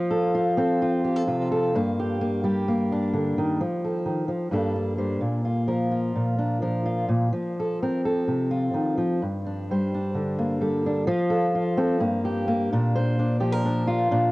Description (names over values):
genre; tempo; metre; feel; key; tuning
folk; 129 BPM; 4/4; straight; unclear; A4 = 439 Hz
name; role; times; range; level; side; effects
fingerpicked steel-string acoustic guitar; solo; 0.0-14.3 s; G2 to C5; -22 LUFS; equal; analog delay
room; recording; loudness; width
light reverb, studio ambience; home recording on cassette; -22 LUFS; side -20 dB against mid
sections
0.0-3.6 A section; 3.6-11.1 B section; 11.1-14.3 A section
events
none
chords
0.0 F; 1.7 Gm; 3.6 F; 4.5 Gmadd9; 5.2 Bb; 7.3 F; 9.2 Gmadd9; 11.1 F; 12.0 Gm; 12.7 Bb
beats
0.34 0.80 1.27 | 1.73 2.20 2.66 3.13 | 3.60 4.06 4.53 5.00 | 5.47 5.93 6.40 6.87 | 7.34 7.81 8.28 8.74 | 9.21 9.68 10.14 10.61 | 11.08 11.54 12.01 12.47 | 12.94 13.40 13.86